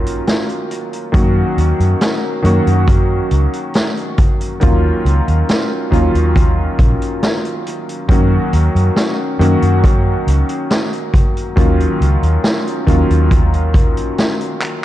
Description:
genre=vaporwave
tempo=69 BPM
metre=4/4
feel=straight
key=F# major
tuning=A4 = 440 Hz
part: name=warm electric grand piano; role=accompaniment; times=0.0-14.8 s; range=D#3 to F#4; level=-18 LUFS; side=left 1 dB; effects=wide subtle chorus, analog delay
part: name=vintage muted fingered electric bass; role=bass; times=0.0-14.1 s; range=A#1 to F#2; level=-14 LUFS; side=equal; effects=tube saturation
part: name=street-band drum kit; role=drums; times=0.1-14.8 s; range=handclaps, hi-hat, snare drum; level=-20 LUFS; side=equal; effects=none
part: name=kick drum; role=drums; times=1.1-13.9 s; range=none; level=-14 LUFS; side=equal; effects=none
room=light reverb, small room ambience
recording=dark, warm production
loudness=-12 LUFS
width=side -14 dB against mid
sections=0.0-14.8 A section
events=drum fill 14.6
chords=0.0 D#m9; 1.1 F#6; 4.6 D#m9; 8.1 F#6; 11.6 D#m9

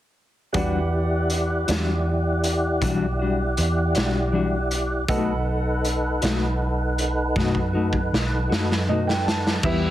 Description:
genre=slow blues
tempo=53 BPM (dotted quarters)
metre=12/8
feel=straight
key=E minor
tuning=A4 = 439 Hz
part: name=bright upright piano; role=accompaniment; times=0.5-9.9 s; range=E4 to A5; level=-31 LUFS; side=right 4 dB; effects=plate reverb
part: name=mellow electric guitar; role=accompaniment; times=0.5-9.9 s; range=B2 to F#4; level=-26 LUFS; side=left 4 dB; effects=tremolo
part: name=mellow tonewheel organ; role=sustained chords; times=0.5-9.9 s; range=B3 to F#5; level=-26 LUFS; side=equal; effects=chorus vibrato, slow rotary speaker, plate reverb
part: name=vintage muted fingered electric bass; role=bass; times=0.5-9.9 s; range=B1 to F#2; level=-25 LUFS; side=equal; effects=none
part: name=raw garage drum kit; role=drums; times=0.5-9.8 s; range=crash cymbal, hi-hat, kick drum, snare drum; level=-26 LUFS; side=equal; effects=none
room=moderate studio reverb, RT60 0.7 s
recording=heavily compressed radio sound, multiband compression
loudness=-20 LUFS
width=side -13 dB against mid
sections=0.6-9.6 A section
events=drum fill 7.4-9.6; upright piano fill 8.5-9.6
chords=0.6 Em9; 5.1 B7

